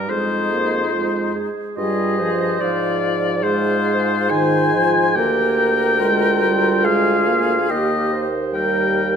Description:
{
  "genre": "classical, slow romantic movement for wind quintet",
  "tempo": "71 BPM",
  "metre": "3/4",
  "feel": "rubato",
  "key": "unclear",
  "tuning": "A4 = 438 Hz",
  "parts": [
    { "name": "silver concert flute", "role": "melody", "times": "0.0-9.2 s", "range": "Eb4 to C5", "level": "-24 LUFS", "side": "left 6 dB", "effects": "none" },
    { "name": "warm oboe", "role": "second line", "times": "0.0-9.2 s", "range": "Bb4 to Ab5", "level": "-20 LUFS", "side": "left 3 dB", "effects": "none" },
    { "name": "mellow clarinet", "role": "accompaniment", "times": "0.0-9.2 s", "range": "F4 to C5", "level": "-25 LUFS", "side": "right 8 dB", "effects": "none" },
    { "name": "warm French horn", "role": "accompaniment", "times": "0.0-9.2 s", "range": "Eb3 to Bb3", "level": "-24 LUFS", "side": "right 1 dB", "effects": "none" },
    { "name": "mellow bassoon", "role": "bass", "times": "0.0-9.2 s", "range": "D2 to Ab2", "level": "-24 LUFS", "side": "right 3 dB", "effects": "none" }
  ],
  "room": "moderate concert hall reverb, RT60 2.1 s",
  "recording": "none",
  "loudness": "-16 LUFS",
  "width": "side -7 dB against mid",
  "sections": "0.0-9.2 A section",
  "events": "none",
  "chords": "0.1 Fm7; 2.6 Fm/Ab; 5.2 Bb7/D; 7.7 Eb"
}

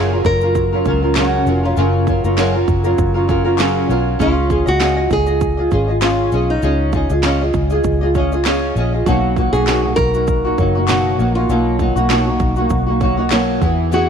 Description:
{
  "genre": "acoustic pop",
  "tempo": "99 BPM",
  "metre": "4/4",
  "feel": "swing 55% on 16ths",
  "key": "unclear",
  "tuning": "A4 = 441 Hz",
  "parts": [
    { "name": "nylon-string guitar", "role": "melody", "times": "0.0-14.1 s", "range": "D#4 to A#4", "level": "-20 LUFS", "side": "equal", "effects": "none" },
    { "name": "flamenco guitar", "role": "accompaniment", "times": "0.0-14.1 s", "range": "F#2 to D#5", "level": "-17 LUFS", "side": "equal", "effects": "double-tracked left and right" },
    { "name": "vintage muted fingered electric bass", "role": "bass", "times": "0.0-14.1 s", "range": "E#1 to E2", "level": "-19 LUFS", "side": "left 1 dB", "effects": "none" },
    { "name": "house drum kit", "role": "drums", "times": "0.2-14.1 s", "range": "kick drum, shaker, snare drum", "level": "-22 LUFS", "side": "right 3 dB", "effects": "none" },
    { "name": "group handclap", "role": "percussion", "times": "1.1-13.5 s", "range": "none", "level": "-27 LUFS", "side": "left 15 dB", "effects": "none" }
  ],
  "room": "light reverb",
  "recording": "1960s-style stereo",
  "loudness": "-13 LUFS",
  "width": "side -7 dB against mid",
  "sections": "0.0-14.1 A section",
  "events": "none",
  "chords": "0.0 F#maj7; 4.2 C#add9; 9.1 Bmaj7"
}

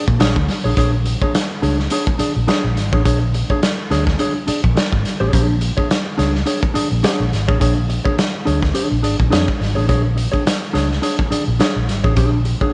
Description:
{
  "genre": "funk",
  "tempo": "105 BPM",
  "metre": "4/4",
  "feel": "swing 56% on 16ths",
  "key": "unclear",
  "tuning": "A4 = 442 Hz",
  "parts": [
    { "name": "mellow electric guitar", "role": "accompaniment", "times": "0.0-12.7 s", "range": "D4 to D5", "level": "-23 LUFS", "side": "equal", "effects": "none" },
    { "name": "vintage muted fingered electric bass", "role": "bass", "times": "0.1-12.5 s", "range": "Ab1 to Bb2", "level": "-20 LUFS", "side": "equal", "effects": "none" },
    { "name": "raw garage drum kit", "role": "drums", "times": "0.1-12.7 s", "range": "hi-hat, kick drum, snare drum", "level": "-21 LUFS", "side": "equal", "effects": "none" }
  ],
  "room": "light reverb, studio ambience",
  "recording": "nothing above 10.3 kHz",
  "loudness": "-17 LUFS",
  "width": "mono",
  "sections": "0.8-12.7 A section",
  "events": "none",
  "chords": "0.0 Bb7#9"
}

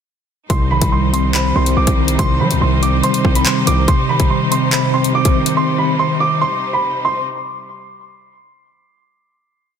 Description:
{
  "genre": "hip hop, drill",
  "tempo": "142 BPM",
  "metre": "4/4",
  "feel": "half-time",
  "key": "C harmonic minor",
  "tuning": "A4 = 440 Hz",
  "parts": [
    { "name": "dark grand piano", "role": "melody", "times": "0.5-7.2 s", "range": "B5 to D6", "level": "-19 LUFS", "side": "right 2 dB", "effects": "ping-pong delay" },
    { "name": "mellow tine electric piano", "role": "accompaniment", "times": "0.5-6.4 s", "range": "C3 to C5", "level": "-17 LUFS", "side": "equal", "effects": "medium stereo tremolo" },
    { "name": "bright studio string section", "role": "sustained chords", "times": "0.5-7.2 s", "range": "C3 to C5", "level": "-24 LUFS", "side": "equal", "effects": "none" },
    { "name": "hard-hitting 808-style bass", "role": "bass", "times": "0.5-3.9 s", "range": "B1 to G3", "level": "-17 LUFS", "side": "equal", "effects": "none" },
    { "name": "drill drum kit", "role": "drums", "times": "0.5-5.6 s", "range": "handclaps, hi-hat, kick drum", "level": "-18 LUFS", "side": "equal", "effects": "none" }
  ],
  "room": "light reverb, digital ambience",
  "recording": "dense, heavily limited modern master",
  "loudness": "-13 LUFS",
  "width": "side -7 dB against mid",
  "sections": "0.5-7.3 hook",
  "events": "none",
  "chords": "0.5 Cm"
}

